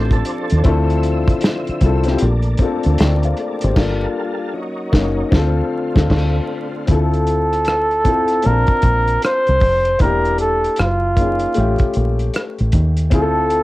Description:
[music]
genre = R&B, neo-soul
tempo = 77 BPM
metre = 4/4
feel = swing 63% on 16ths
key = D minor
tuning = A4 = 440 Hz
[part]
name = clean electric guitar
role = second line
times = 0.0-0.6 s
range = A4 to C5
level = -29 LUFS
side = right 6 dB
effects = lush chorus, cassette tape, analog delay
[part]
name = warm upright piano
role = accompaniment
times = 0.0-13.6 s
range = A3 to A5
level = -22 LUFS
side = left 5 dB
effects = cassette tape
[part]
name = tonewheel organ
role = sustained chords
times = 0.0-6.9 s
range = D3 to E5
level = -26 LUFS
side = right 1 dB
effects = chorus vibrato, fast rotary speaker, cassette tape
[part]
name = deep dub fingered electric bass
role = bass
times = 0.0-13.6 s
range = E1 to Eb2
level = -18 LUFS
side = equal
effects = none
[part]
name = cloth-damped thuddy drum kit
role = drums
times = 0.1-13.6 s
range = crash cymbal, hi-hat, kick drum, rim click, snare drum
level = -18 LUFS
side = equal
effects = cassette tape
[part]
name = trumpet with bucket mute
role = melody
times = 6.9-13.6 s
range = F4 to C5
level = -17 LUFS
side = right 1 dB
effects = cassette tape
[sound]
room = little or no reverb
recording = home recording on cassette, vinyl crackle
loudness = -14 LUFS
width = side -18 dB against mid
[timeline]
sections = 0.0-6.9 A section; 6.9-13.6 B section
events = band accent 3.8-6.9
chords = 0.0 F6; 0.6 Dm9; 2.2 Bbmaj9; 3.8 Gm9; 4.5 F#6; 5.3 Dm7; 6.9 Dm9; 8.4 Bbmaj9; 10.0 Em7b5; 10.8 F#6; 11.6 A7; 13.1 Dm9

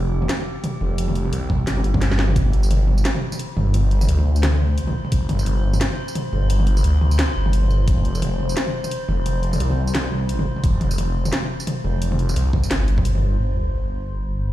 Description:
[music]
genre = half-time drum and bass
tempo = 174 BPM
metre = 4/4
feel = swing 58% on 16ths, half-time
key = unclear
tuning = A4 = 438 Hz
[part]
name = phased detuned saw bass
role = bass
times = 0.0-14.5 s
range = F1 to D2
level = -19 LUFS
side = equal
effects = phaser
[part]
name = metallic inharmonic drone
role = texture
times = 0.0-14.5 s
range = G4 to C5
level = -32 LUFS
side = left 1 dB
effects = chorus, built-in reverb, phaser
[part]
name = drum and bass drum kit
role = drums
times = 0.2-13.2 s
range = hi-hat, snare drum, tambourine, toms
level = -25 LUFS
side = equal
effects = none
[part]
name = electronic kick drum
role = drums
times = 1.5-2.4, 5.1-5.2, 7.9-8.0, 10.6-13.0 s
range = none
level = -20 LUFS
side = equal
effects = none
[part]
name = sub drop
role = sound effects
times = 13.4-14.5 s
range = none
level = -27 LUFS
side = equal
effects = none
[sound]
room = little or no reverb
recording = played on a big sound system in a bare room, large studio reverb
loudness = -18 LUFS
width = side -14 dB against mid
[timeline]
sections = 0.0-13.4 A section; 13.4-14.5 B section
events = drum fill 1.7-2.4; kick drops out 2.0-2.4; impact 13.4-14.5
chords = 0.0 F5; 2.4 G5; 7.9 F5; 13.4 Gsus4

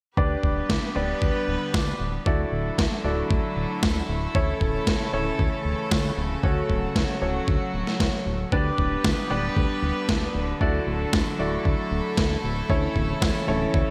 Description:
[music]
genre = italo disco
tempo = 115 BPM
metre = 4/4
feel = straight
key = D major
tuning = A4 = 438 Hz
[part]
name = rich chamber string section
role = sustained chords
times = 0.2-13.9 s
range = C#3 to B4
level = -32 LUFS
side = equal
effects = none
[part]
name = clear baby grand piano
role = stabs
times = 0.2-13.9 s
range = C#4 to D5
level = -32 LUFS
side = equal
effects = low-pass filter
[part]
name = fat analog bass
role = bass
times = 0.2-13.8 s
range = D1 to D2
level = -31 LUFS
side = equal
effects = none
[part]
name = electronic kick drum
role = drums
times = 0.2-13.8 s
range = none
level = -28 LUFS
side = equal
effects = overdrive, studio reverb
[part]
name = electronic snare drum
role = drums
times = 0.7-13.3 s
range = none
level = -30 LUFS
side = equal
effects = overdrive, studio reverb, gated reverb
[sound]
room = moderate lush hall reverb, RT60 1.7 s, small room ambience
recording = bright 1980s-style digital production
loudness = -25 LUFS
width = mono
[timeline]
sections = 0.2-13.9 A section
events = filter sweep on analog synth bass 0.2-13.9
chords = 0.2 G/D; 2.3 Dadd9; 4.3 A/D; 6.4 F#m/D; 8.5 G/D; 10.6 Dadd9; 12.7 A/D

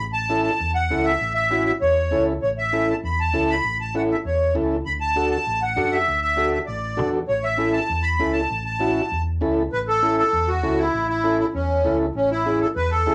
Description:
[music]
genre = latin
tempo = 197 BPM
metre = 4/4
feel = straight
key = A major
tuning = A4 = 441 Hz
[part]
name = accordion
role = melody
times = 0.0-13.1 s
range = C#4 to B5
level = -24 LUFS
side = equal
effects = light tremolo tuning
[part]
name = fingered electric bass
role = bass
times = 0.0-13.1 s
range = A1 to F#2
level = -30 LUFS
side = equal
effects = none
[part]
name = overdriven combo organ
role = accompaniment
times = 0.3-13.1 s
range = C#4 to A4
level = -26 LUFS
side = equal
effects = none
[sound]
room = wet club reverb, RT60 0.5 s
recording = none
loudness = -22 LUFS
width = mono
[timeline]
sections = 0.0-9.7 A section; 9.7-13.1 A section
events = none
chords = 0.0 A; 4.9 D; 7.3 A

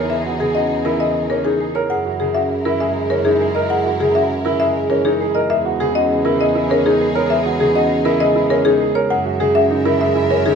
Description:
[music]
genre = classical, minimalist pattern music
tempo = 100 BPM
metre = 3/4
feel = straight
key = E lydian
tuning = A4 = 439 Hz
[part]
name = buzzing marimba with medium hard mallets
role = melody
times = 0.0-10.6 s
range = G#4 to F#5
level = -18 LUFS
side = left 6 dB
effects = none
[part]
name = concert harp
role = accompaniment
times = 0.0-10.6 s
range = C#3 to G#3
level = -22 LUFS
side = right 2 dB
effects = none
[part]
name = rich symphonic violin section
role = sustained chords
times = 0.0-10.6 s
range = D#4 to E5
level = -28 LUFS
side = left 2 dB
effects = none
[part]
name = clear concert grand piano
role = arpeggios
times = 0.0-10.6 s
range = C#4 to A#4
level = -20 LUFS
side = right 8 dB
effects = none
[part]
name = rich cello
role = bass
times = 0.0-10.6 s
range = E2 to F#2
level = -25 LUFS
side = right 3 dB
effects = none
[sound]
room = moderate recital hall reverb, RT60 1.8 s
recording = minimal, uncompressed stereo recording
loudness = -15 LUFS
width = side -6 dB against mid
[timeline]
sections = 0.0-10.6 A section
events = none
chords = 0.0 Emaj9#11; 1.9 F#9; 5.5 Emaj9#11; 9.1 F#13

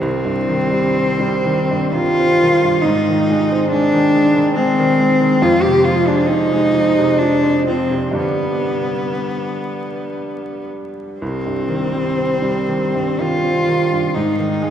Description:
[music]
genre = classical, romantic duo for cello and grand piano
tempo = 55-72 BPM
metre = 3/4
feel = rubato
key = C minor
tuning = A4 = 440 Hz
[part]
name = rich cello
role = melody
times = 0.0-14.7 s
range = B3 to G4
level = -16 LUFS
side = equal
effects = none
[part]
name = bright baby grand piano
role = accompaniment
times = 0.0-14.7 s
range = C2 to D4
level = -19 LUFS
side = right 1 dB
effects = none
[sound]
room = wet church reverb, RT60 3.7 s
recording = recorded in a church or concert hall, vinyl crackle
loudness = -14 LUFS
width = side -9 dB against mid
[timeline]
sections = 0.0-14.7 A section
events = none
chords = 0.0 Cm; 2.8 Ab; 5.4 Fm7; 8.2 G; 11.2 Cm; 14.2 Ab5

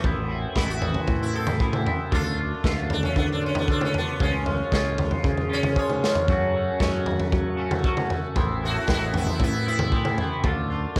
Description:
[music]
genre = psychedelic rock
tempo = 115 BPM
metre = 4/4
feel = straight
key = unclear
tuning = A4 = 441 Hz
[part]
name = sitar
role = melody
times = 0.0-10.4 s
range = A3 to C#5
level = -32 LUFS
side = equal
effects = analog delay
[part]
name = twangy electric guitar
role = riff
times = 0.0-11.0 s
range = F#2 to F#4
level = -32 LUFS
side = equal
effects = phaser, double-tracked
[part]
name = modern bright picked electric bass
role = bass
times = 0.0-11.0 s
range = A1 to F#3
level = -30 LUFS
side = equal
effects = none
[part]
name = pedal harmonium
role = drone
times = 0.0-11.0 s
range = F#2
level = -39 LUFS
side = equal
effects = none
[part]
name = crunchy breakbeat drum kit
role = drums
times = 0.0-11.0 s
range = kick drum, snare drum, toms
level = -28 LUFS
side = equal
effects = none
[part]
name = tonewheel organ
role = sustained chords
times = 6.3-11.0 s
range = D4 to C#6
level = -43 LUFS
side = equal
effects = none
[sound]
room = small room ambience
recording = none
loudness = -24 LUFS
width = mono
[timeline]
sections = 0.0-11.0 A section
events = sitar solo 0.0-11.0; drum fill 5.8-6.3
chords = 0.0 Amadd9; 2.1 Dm; 4.2 C#; 6.3 F#m; 8.4 Amadd9; 10.4 Dm

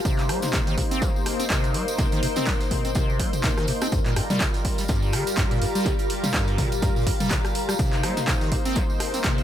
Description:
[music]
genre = acid house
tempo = 124 BPM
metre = 4/4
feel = swing 56% on 16ths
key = unclear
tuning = A4 = 440 Hz
[part]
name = warm analog pad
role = sustained chords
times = 0.0-9.4 s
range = G3 to C5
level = -31 LUFS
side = left 1 dB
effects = chorus, tremolo, sidechain pumping
[part]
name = granular cloud pad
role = texture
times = 0.0-9.4 s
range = G4 to C6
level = -31 LUFS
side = left 2 dB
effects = built-in reverb, sidechain pumping
[part]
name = acid bass, square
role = riff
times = 0.1-9.4 s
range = G2 to C4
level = -28 LUFS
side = equal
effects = tube saturation, wide subtle chorus, sidechain pumping, ping-pong delay
[part]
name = electronic kick drum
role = drums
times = 0.1-9.4 s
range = none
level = -25 LUFS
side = equal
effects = overdrive
[part]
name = gated 80s drum kit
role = drums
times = 0.1-9.4 s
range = hi-hat, snare drum, tambourine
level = -40 LUFS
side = left 1 dB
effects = none
[part]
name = punchy analog drum machine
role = drums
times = 0.1-9.4 s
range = handclaps, hi-hat, rim click, snare drum, toms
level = -29 LUFS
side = equal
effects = overdrive
[part]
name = tambourine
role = percussion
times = 0.1-9.4 s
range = none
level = -36 LUFS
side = right 3 dB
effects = none
[sound]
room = small room ambience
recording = none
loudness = -21 LUFS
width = side -11 dB against mid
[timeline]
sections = 0.0-9.4 A section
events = none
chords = 0.1 Cm7; 3.9 Gm7; 7.8 Cm7

